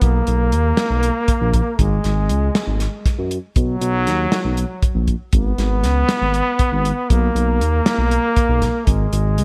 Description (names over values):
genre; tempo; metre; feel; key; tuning
progressive instrumental, band music in an uneven meter; 237 BPM (eighths); 7/8; straight; unclear; A4 = 440 Hz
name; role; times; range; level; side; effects
clear trombone; second line; 0.0-9.4 s; F#3 to B3; -23 LUFS; equal; digital delay
smooth synth bass; bass; 0.0-9.4 s; G#1 to F#2; -21 LUFS; equal; none
warm soul drum kit; drums; 0.0-9.4 s; hi-hat, kick drum, snare drum; -22 LUFS; equal; gated reverb
room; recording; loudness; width
light reverb, small room ambience; bright 1980s-style digital production; -18 LUFS; mono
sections
0.0-9.4 A section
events
none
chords
0.0 Bmaj7; 1.8 G#7sus4; 3.6 Bmaj7; 5.3 G#m; 7.1 Bmaj7; 8.9 G#sus4